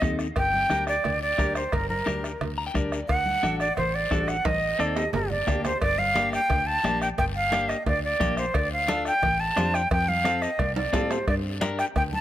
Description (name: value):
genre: latin, cumbia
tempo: 176 BPM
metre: 4/4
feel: straight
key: G harmonic minor, G minor from 5.8 s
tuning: A4 = 441 Hz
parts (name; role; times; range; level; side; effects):
- jazz flute; melody; 0.0-12.2 s; Bb4 to A5; -25 LUFS; right 1 dB; none
- clean electric guitar; accompaniment; 0.0-11.9 s; Bb3 to Bb5; -32 LUFS; left 4 dB; none
- fingered electric bass; bass; 0.0-12.2 s; G1 to A2; -31 LUFS; equal; none
- bombo; percussion; 0.0-12.1 s; none; -30 LUFS; equal; none
- congas; percussion; 0.0-12.2 s; none; -36 LUFS; right 1 dB; none
- guiro; percussion; 0.0-12.2 s; none; -41 LUFS; left 6 dB; none
- timbales and cowbell; percussion; 0.0-12.1 s; none; -35 LUFS; right 4 dB; none
room: light reverb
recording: none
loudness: -22 LUFS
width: side -12 dB against mid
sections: 0.0-5.8 A section; 5.8-12.2 B section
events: clean electric guitar fill 2.4-3.1; drum fill 4.5-5.8, 10.8-11.3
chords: 0.4 Gm; 3.1 D; 4.5 Adim; 5.1 Gm; 8.5 Dm7; 9.9 F; 11.3 Gm